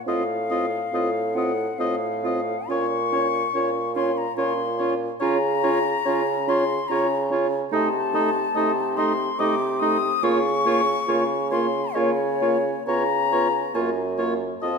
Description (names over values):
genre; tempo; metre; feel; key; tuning
classical, slow romantic movement for wind quintet; 70 BPM; 3/4; uneven beats, rubato; Bb minor; A4 = 440 Hz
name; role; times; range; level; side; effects
mellow concert flute; melody; 0.0-14.8 s; Db5 to Eb6; -26 LUFS; left 7 dB; none
mellow oboe; second line; 0.1-14.8 s; Db5 to Eb5; -29 LUFS; left 3 dB; none
clear clarinet; accompaniment; 0.1-14.8 s; Eb4 to F4; -28 LUFS; right 4 dB; none
mellow French horn; accompaniment; 0.1-14.8 s; A3 to Db4; -30 LUFS; right 1 dB; none
mellow bassoon; bass; 0.1-14.8 s; F2 to Db3; -26 LUFS; right 3 dB; none
room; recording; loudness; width
moderate scoring stage reverb, RT60 2.0 s; minimal, uncompressed stereo recording; -20 LUFS; side -5 dB against mid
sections
0.0-14.8 A section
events
none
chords
0.1 F7/A; 2.7 Bbm; 5.2 Bbm/Db; 7.7 Adim/C; 10.2 Bbm/Db; 12.9 Db7; 13.7 Gbmaj7